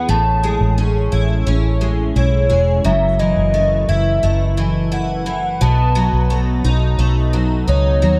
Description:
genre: dream pop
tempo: 87 BPM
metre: 4/4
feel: straight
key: F# dorian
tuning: A4 = 441 Hz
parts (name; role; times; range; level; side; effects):
- warbly nostalgic lead; melody; 0.0-8.2 s; C#5 to A5; -22 LUFS; equal; chorus, phaser, digital delay
- picked twelve-string acoustic guitar; arpeggios; 0.0-8.2 s; F#2 to G#4; -22 LUFS; equal; analog chorus, digital delay
- vintage muted fingered electric bass; bass; 0.0-8.2 s; E1 to D#2; -19 LUFS; equal; none
room: light reverb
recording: dark, warm production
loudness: -16 LUFS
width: mono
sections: 0.0-8.2 A section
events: none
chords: 0.1 Amaj7; 2.9 F#m7; 5.6 B7

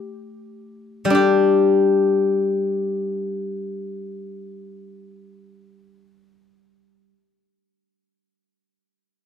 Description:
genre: chinese traditional, Chinese solo plucked strings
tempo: free time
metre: none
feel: none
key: unclear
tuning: A4 = 440 Hz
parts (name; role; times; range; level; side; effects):
- steel-string zither; solo; 0.0-7.1 s; G3 to G4; -19 LUFS; left 3 dB; none
room: moderate studio reverb, RT60 0.5 s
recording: close, detailed microphones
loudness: -17 LUFS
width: side -8 dB against mid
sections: 0.0-1.2 A section; 1.2-5.3 B section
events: none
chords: none

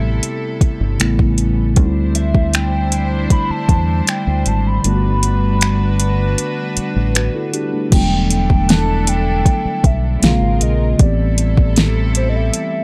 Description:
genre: contemporary R&B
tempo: 78 BPM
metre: 4/4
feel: straight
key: E minor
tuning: A4 = 442 Hz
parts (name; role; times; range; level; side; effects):
- hollow clarinet-like synth lead; melody; 0.0-12.8 s; C5 to B5; -26 LUFS; equal; chorus
- mellow tine electric piano; accompaniment; 0.0-12.8 s; C3 to B4; -23 LUFS; equal; none
- dark studio string section; sustained chords; 0.0-12.8 s; C3 to C5; -27 LUFS; equal; sidechain pumping
- deep dub fingered electric bass; bass; 0.0-12.5 s; E1 to E2; -20 LUFS; equal; none
- smooth R&B drum kit; drums; 0.2-12.7 s; crash cymbal, finger snaps, hi-hat, kick drum, snare drum; -17 LUFS; equal; overdrive
- soft synth bell; texture; 2.2-3.1, 8.7-9.6 s; E5 to F#6; -42 LUFS; equal; none
room: little or no reverb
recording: dry, gritty hardware recording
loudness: -16 LUFS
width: mono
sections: 0.0-7.9 A section; 7.9-12.8 B section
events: kick muted 4.8-7.9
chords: 0.0 Am7; 1.0 A9; 1.8 D9sus4; 4.8 Gmaj7; 7.9 Em11; 10.2 A#m7; 11.0 Am7

